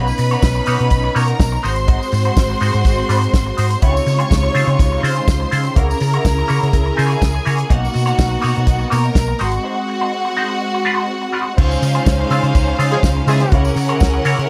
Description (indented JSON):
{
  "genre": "disco",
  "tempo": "124 BPM",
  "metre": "4/4",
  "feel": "straight",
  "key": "Db major",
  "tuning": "A4 = 440 Hz",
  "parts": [
    { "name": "bright studio violin section", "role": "second line", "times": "0.0-14.5 s", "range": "Db4 to Db6", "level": "-24 LUFS", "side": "equal", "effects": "none" },
    { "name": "semi-hollow electric guitar", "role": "accompaniment", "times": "0.0-14.5 s", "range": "Ab3 to Db5", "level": "-26 LUFS", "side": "equal", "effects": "wah" },
    { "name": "rich studio string section", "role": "sustained chords", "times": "0.0-14.5 s", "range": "C3 to C5", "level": "-26 LUFS", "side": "equal", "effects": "none" },
    { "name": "hollow-body short-scale fingered electric bass", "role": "bass", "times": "0.0-14.5 s", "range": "Ab1 to Db3", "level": "-20 LUFS", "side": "equal", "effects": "none" },
    { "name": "tambourine", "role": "percussion", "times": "0.1-14.4 s", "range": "none", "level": "-39 LUFS", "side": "equal", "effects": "none" },
    { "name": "damped 70s drum kit", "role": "drums", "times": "0.2-14.5 s", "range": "crash cymbal, hi-hat, kick drum, snare drum", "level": "-20 LUFS", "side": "equal", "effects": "none" },
    { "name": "mellow horn section", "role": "stabs", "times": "12.9-13.6 s", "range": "Fb3 to Ab4", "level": "-23 LUFS", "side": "equal", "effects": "none" }
  ],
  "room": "light reverb",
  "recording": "none",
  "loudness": "-16 LUFS",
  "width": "mono",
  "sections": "0.0-11.6 A section; 11.6-14.5 B section",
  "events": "break 9.6-11.6",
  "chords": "0.0 Cbmaj9; 1.6 Ab7; 3.8 Dbmaj7; 5.8 Gb7/Db; 7.7 Cbmaj9; 9.4 Ab7; 11.6 Dbmaj7; 13.5 Gb7/Db"
}